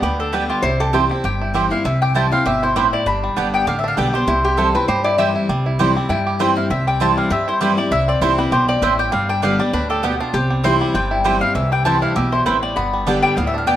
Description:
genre	bluegrass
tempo	198 BPM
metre	4/4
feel	swing 55% on 8ths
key	C major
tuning	A4 = 441 Hz
part	bluegrass banjo	melody	0.0-13.8 s	E3 to G4	-24 LUFS	right 3 dB	plate reverb
part	mandolin	melody	0.0-13.8 s	F4 to B5	-20 LUFS	left 3 dB	plate reverb
part	picked steel-string acoustic guitar	accompaniment	0.0-13.8 s	G2 to G4	-21 LUFS	left 1 dB	none
part	upright bass	bass	0.0-13.8 s	G1 to G2	-24 LUFS	equal	none
part	mandolin	stabs	0.3-13.8 s	B3 to G5	-21 LUFS	right 7 dB	none
part	lap resonator guitar	second line	0.6-1.2, 4.4-5.5, 10.3-10.9 s	G4 to E5	-20 LUFS	left 2 dB	none
room	moderate studio reverb, RT60 0.8 s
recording	none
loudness	-15 LUFS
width	side -11 dB against mid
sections	0.0-5.5 A section; 5.5-13.8 A section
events	none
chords	0.0 G; 0.6 C; 3.1 G; 4.3 C; 9.1 G; 10.3 C; 12.8 G

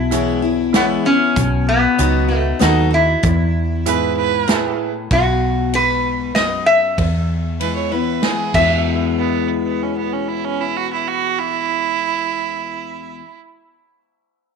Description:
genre	honky-tonk and classic country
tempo	96 BPM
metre	3/4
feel	straight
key	E major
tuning	A4 = 443 Hz
part	lap resonator guitar	melody	0.0-13.2 s	B3 to E5	-18 LUFS	equal	none
part	picked steel-string acoustic guitar	accompaniment	0.0-13.2 s	E2 to F#4	-22 LUFS	left 11 dB	none
part	vintage muted fingered electric bass	bass	0.0-13.2 s	B1 to E2	-20 LUFS	right 1 dB	none
part	bright grand piano	accompaniment	0.1-4.9 s	D#4 to C#5	-23 LUFS	right 13 dB	none
part	natural country drum kit	drums	0.1-8.7 s	crash cymbal, hi-hat, kick drum, ride cymbal, snare drum	-22 LUFS	right 1 dB	none
part	clear fiddle	second line	3.9-4.8, 7.6-13.4 s	B3 to C#5	-21 LUFS	right 11 dB	none
room	moderate spring reverb, RT60 1.6 s, studio reverb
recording	1960s-style stereo with parts hard left and right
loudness	-15 LUFS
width	side -6 dB against mid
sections	0.0-5.1 A section; 5.1-8.9 B section; 8.9-12.6 C section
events	none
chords	0.0 E; 1.4 B; 3.2 E; 5.1 B5; 7.0 E

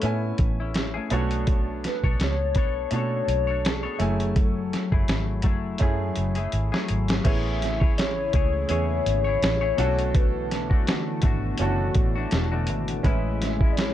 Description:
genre	indie pop, bedroom pop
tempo	83 BPM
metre	4/4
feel	swing 55% on 16ths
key	A major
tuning	A4 = 440 Hz
part	warbly nostalgic lead	melody	0.0-13.9 s	G#4 to E5	-29 LUFS	left 4 dB	analog chorus, tape echo
part	bright upright piano	accompaniment	0.0-13.9 s	A3 to G#5	-32 LUFS	right 5 dB	none
part	semi-hollow electric guitar	accompaniment	0.0-13.9 s	A2 to C#5	-31 LUFS	left 5 dB	analog chorus, warbly pitch drift
part	vintage muted fingered electric bass	bass	0.0-13.9 s	E1 to B2	-27 LUFS	equal	none
part	lo-fi sampler-style drum kit	drums	0.0-13.9 s	crash cymbal, hi-hat, kick drum, snare drum	-24 LUFS	equal	none
part	lush unison pad	sustained chords	7.7-13.9 s	C#3 to G#4	-33 LUFS	right 1 dB	chorus, phaser
room	light reverb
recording	dark, warm production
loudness	-22 LUFS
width	side -12 dB against mid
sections	0.0-7.3 A section; 7.3-13.9 B section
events	drum fill 5.8-7.3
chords	0.0 Amaj7; 1.1 Bm9; 4.0 F#m9; 7.3 Amaj7; 9.8 Bm7; 13.0 Amaj7

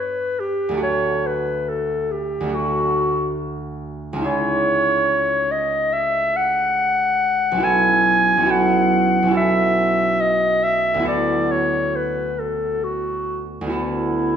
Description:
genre	classical, impressionist duo for clarinet and harp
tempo	70 BPM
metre	4/4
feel	rubato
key	D major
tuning	A4 = 443 Hz
part	warm clarinet	melody	0.0-14.4 s	E4 to G#5	-19 LUFS	left 1 dB	none
part	concert harp	accompaniment	0.0-14.4 s	B1 to A4	-22 LUFS	right 2 dB	none
room	wet recital hall reverb, RT60 1.5 s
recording	minimal, uncompressed stereo recording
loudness	-17 LUFS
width	side -8 dB against mid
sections	0.0-14.4 A section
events	none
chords	0.0 Gmaj7; 0.8 D; 4.3 C#madd9; 7.6 B9sus4; 11.1 D69

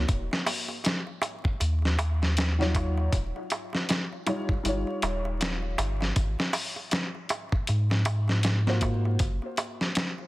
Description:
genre	trip hop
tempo	79 BPM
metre	4/4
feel	swing 59% on 16ths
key	unclear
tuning	A4 = 445 Hz
part	soft dub sub bass	bass	0.0-9.4 s	Eb1 to Ab2	-26 LUFS	equal	none
part	dusty soul sampler-style drum kit	drums	0.1-10.2 s	hi-hat, kick drum, snare drum	-28 LUFS	equal	vintage 12-bit sampler grit, studio reverb
part	darbuka	percussion	0.1-10.3 s	none	-34 LUFS	right 2 dB	none
part	felt-muted upright piano	accompaniment	2.6-9.2 s	Gb3 to Db5	-33 LUFS	left 1 dB	harmonic tremolo, tape echo
room	light reverb, small room ambience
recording	dense, heavily limited modern master, vinyl crackle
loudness	-25 LUFS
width	side -18 dB against mid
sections	0.0-10.3 A section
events	none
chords	0.1 Ebm9; 3.1 Eb9; 6.2 Ab13; 9.2 N.C.

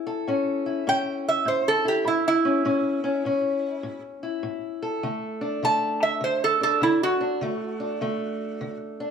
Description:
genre	acoustic country blues, solo or duo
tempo	101 BPM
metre	4/4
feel	swing 64% on 8ths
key	A mixolydian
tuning	A4 = 440 Hz
part	fingerpicked steel-string acoustic guitar	accompaniment	0.0-9.1 s	A2 to A4	-27 LUFS	left 2 dB	none
part	metal-body resonator slide guitar	melody	0.9-8.8 s	E4 to A5	-23 LUFS	right 3 dB	plate reverb
room	moderate studio reverb, RT60 0.8 s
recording	studio ambience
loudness	-22 LUFS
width	side -7 dB against mid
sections	0.0-9.1 A section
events	resonator guitar played with a steel bar solo 0.0-9.1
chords	0.0 A; 5.0 D

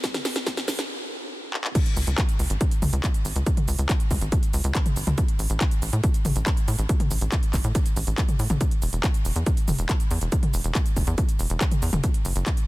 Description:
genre	uplifting trance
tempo	140 BPM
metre	4/4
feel	straight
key	C# minor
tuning	A4 = 441 Hz
part	big-room dance drum kit	drums	0.0-12.7 s	crash cymbal, handclaps, hi-hat, shaker, snare drum, toms	-28 LUFS	equal	sidechain pumping on hats, sidechain pumping on toms, sidechain pumping on perc, sidechain pumping on cymbals
part	electronic kick drum	drums	0.0-12.6 s	none	-23 LUFS	equal	none
part	tight sequencer bass	bass	2.0-12.4 s	E1 to A2	-24 LUFS	equal	sidechain pumping
room	digital ambience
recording	dense, heavily limited modern master, high-pass filter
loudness	-21 LUFS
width	side -19 dB against mid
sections	0.0-1.8 A section; 1.8-12.7 B section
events	build-up 0.0-1.8; drum fill 0.0-0.9, 1.5; stop 0.9-1.8; drop 1.8-12.7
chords	none

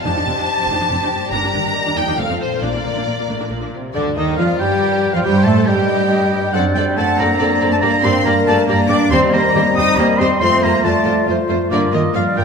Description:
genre	classical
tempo	139 BPM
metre	3/4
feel	straight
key	Bb major, G minor from 4.0 s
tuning	A4 = 439 Hz
part	rich symphonic violin section	melody	0.0-12.4 s	D4 to Bb5	-23 LUFS	left 2 dB	none
part	warm symphonic violin section	second line	0.0-12.4 s	F4 to Eb6	-25 LUFS	left 2 dB	none
part	concert harp	arpeggios	0.0-12.4 s	F2 to C5	-24 LUFS	left 6 dB	none
part	rich symphonic viola section	accompaniment	0.1-12.4 s	D3 to A4	-25 LUFS	right 2 dB	none
part	rich symphonic double bass section	bass	0.1-12.4 s	F1 to A2	-23 LUFS	right 3 dB	none
part	warm symphonic cello section	bass	0.1-12.4 s	Eb2 to Eb4	-22 LUFS	right 2 dB	none
part	mellow French horn section	sustained chords	3.9-12.4 s	D3 to F4	-24 LUFS	left 4 dB	none
part	dark clarinet	second line	4.0-12.4 s	C4 to A4	-25 LUFS	equal	none
part	warm oboe	second line	4.0-12.4 s	D5 to Eb6	-20 LUFS	right 1 dB	none
part	warm bassoon	accompaniment	4.0-12.4 s	D3 to C4	-24 LUFS	right 3 dB	none
part	concert flute	second line	4.4-12.4 s	Bb4 to F#5	-23 LUFS	left 2 dB	none
room	wet concert hall reverb, RT60 2.3 s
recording	minimal, uncompressed stereo recording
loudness	-14 LUFS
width	side -5 dB against mid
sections	0.0-4.0 A section; 4.0-12.4 B section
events	none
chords	0.1 F13; 1.3 Gm; 1.8 Ebmaj7; 2.2 F; 2.6 Bb; 4.0 Gm/D; 5.3 Am7b5/G; 6.5 D7/F#; 7.8 Gm; 9.1 Cm7/Eb; 10.4 F; 11.7 Gm7

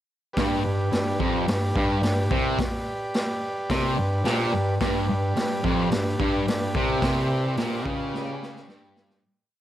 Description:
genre	garage rock duo or trio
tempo	108 BPM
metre	4/4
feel	straight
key	G mixolydian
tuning	A4 = 440 Hz
part	overdriven combo organ	sustained chords	0.3-9.2 s	G4 to D5	-32 LUFS	right 1 dB	none
part	fuzz guitar	riff	0.4-9.2 s	F2 to C#3	-25 LUFS	equal	distortion
part	mellow bassoon	bass	0.4-9.2 s	Bb1 to G2	-31 LUFS	equal	overdrive
part	raw garage drum kit	drums	0.4-9.2 s	hi-hat, kick drum, snare drum	-28 LUFS	equal	none
room	moderate spring reverb, RT60 1.9 s, studio reverb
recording	none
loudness	-22 LUFS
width	side -12 dB against mid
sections	0.4-9.2 verse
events	fade-out 7.0-9.2; drum fill 8.1-9.2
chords	0.4 G

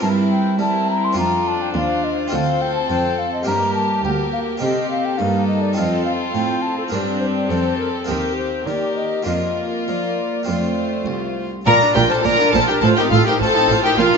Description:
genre	classical, baroque-style concerto movement with solo episodes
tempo	104 BPM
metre	4/4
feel	straight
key	Bb major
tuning	A4 = 440 Hz
part	mellow baroque flute	melody	0.0-14.2 s	A4 to C6	-23 LUFS	left 2 dB	none
part	warm chamber violin section	melody	0.0-14.2 s	G4 to Bb5	-25 LUFS	left 5 dB	none
part	rich chamber violin section	second line	0.0-14.2 s	D4 to Bb4	-23 LUFS	left 1 dB	none
part	harpsichord	accompaniment	0.0-14.2 s	C2 to C5	-25 LUFS	right 1 dB	none
part	warm chamber viola section	accompaniment	0.0-14.2 s	A3 to F4	-25 LUFS	right 2 dB	none
part	rich chamber cello section	bass	0.0-14.1 s	C2 to G3	-24 LUFS	right 4 dB	none
part	rich chamber double bass section	bass	11.7-14.1 s	A1 to Bb1	-25 LUFS	right 6 dB	none
room	wet concert hall reverb, RT60 2.0 s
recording	nothing above 7.7 kHz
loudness	-16 LUFS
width	side -5 dB against mid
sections	0.0-11.7 A section; 11.7-14.2 B section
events	none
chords	0.0 C7/G; 1.2 F; 2.3 Dm7; 3.5 Gm; 4.6 Cm7; 5.8 F; 6.9 Gm; 8.1 Eb; 9.3 Bb/F; 10.5 F; 11.7 Bb; 12.8 F7/A

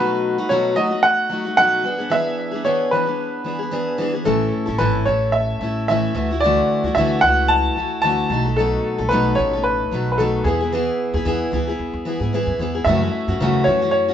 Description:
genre	acoustic pop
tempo	112 BPM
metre	4/4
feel	swing 55% on 16ths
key	unclear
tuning	A4 = 440 Hz
part	clear upright piano	melody	0.0-14.1 s	G#4 to A5	-19 LUFS	equal	tape echo
part	picked steel-string acoustic guitar	accompaniment	0.0-14.1 s	F#2 to A4	-22 LUFS	left 1 dB	none
part	upright bass	bass	4.3-14.1 s	G#1 to G#2	-24 LUFS	right 1 dB	none
room	moderate studio ambience, RT60 0.5 s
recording	band playing live in one room, nothing above 7.8 kHz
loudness	-17 LUFS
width	side -9 dB against mid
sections	0.0-12.9 A section; 12.9-14.1 B section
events	none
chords	0.0 B7; 1.8 E7; 4.3 A; 6.2 Dadd9; 8.3 B7; 10.5 E; 12.9 F#m7

